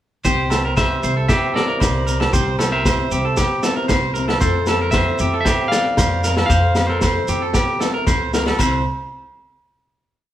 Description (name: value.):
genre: highlife guitar band.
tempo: 115 BPM.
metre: 4/4.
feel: straight.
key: C mixolydian.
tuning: A4 = 440 Hz.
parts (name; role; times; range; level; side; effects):
clean electric guitar; melody; 0.2-7.6 s; G4 to F5; -22 LUFS; left 1 dB; none.
fingerpicked steel-string acoustic guitar; accompaniment; 0.2-8.8 s; G3 to A4; -29 LUFS; left 5 dB; none.
mellow tonewheel organ; sustained chords; 0.2-8.8 s; C4 to C5; -31 LUFS; right 1 dB; none.
upright bass; bass; 0.2-8.8 s; C2 to F2; -22 LUFS; equal; none.
crunchy breakbeat drum kit; drums; 0.2-8.7 s; crash cymbal, kick drum, snare drum; -21 LUFS; equal; none.
shekere; percussion; 0.2-8.8 s; none; -26 LUFS; equal; none.
electric guitar at the edge of break-up; arpeggios; 0.3-8.8 s; G4 to C5; -23 LUFS; right 3 dB; none.
agogo bells; percussion; 0.5-8.7 s; none; -27 LUFS; right 2 dB; none.
room: moderate stone room reverb, RT60 1.1 s.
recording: band playing live in one room.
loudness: -16 LUFS.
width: side -12 dB against mid.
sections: 0.2-8.6 groove; 8.6-10.3 final chord.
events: drum fill 8.1-8.6.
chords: 0.2 C; 4.4 Fmaj7; 8.6 C.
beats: | 0.25 0.77 1.29 1.81 | 2.33 2.85 3.37 3.89 | 4.41 4.94 5.46 5.98 | 6.51 7.03 7.55 8.07 | 8.60.